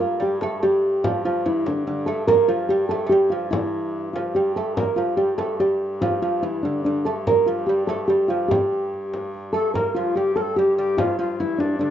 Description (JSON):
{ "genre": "medieval dance", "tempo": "145 BPM", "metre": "3/4", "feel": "straight", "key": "G dorian", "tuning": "A4 = 438 Hz", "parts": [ { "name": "nylon-string guitar", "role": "melody", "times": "0.0-11.9 s", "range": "D4 to Bb4", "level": "-20 LUFS", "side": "right 1 dB", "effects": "plate reverb" }, { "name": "lute", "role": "second line", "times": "0.0-11.9 s", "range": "D3 to Bb3", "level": "-32 LUFS", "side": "right 3 dB", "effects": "plate reverb" }, { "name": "warm hurdy-gurdy", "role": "drone", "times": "0.0-11.9 s", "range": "G2", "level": "-32 LUFS", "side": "left 2 dB", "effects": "plate reverb" }, { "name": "frame drum", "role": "percussion", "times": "0.2-11.9 s", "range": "none", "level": "-28 LUFS", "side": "left 2 dB", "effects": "none" }, { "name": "mellow tenor recorder", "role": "second line", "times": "9.6-11.9 s", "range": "D4 to Bb4", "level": "-26 LUFS", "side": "left 6 dB", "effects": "plate reverb" } ], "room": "moderate studio reverb, RT60 0.6 s", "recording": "rough home demo mix, nothing above 7.7 kHz", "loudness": "-19 LUFS", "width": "side -10 dB against mid", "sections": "0.0-9.7 A section; 9.7-11.9 A section", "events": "none", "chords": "none", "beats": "0.21 0.63 | 1.04 1.46 1.87 | 2.29 2.70 3.12 | 3.53 3.95 4.36 | 4.78 5.19 5.61 | 6.02 6.43 6.85 | 7.26 7.68 8.09 | 8.50 8.92 9.33 | 9.74 10.16 10.57 | 10.98 11.39 11.81" }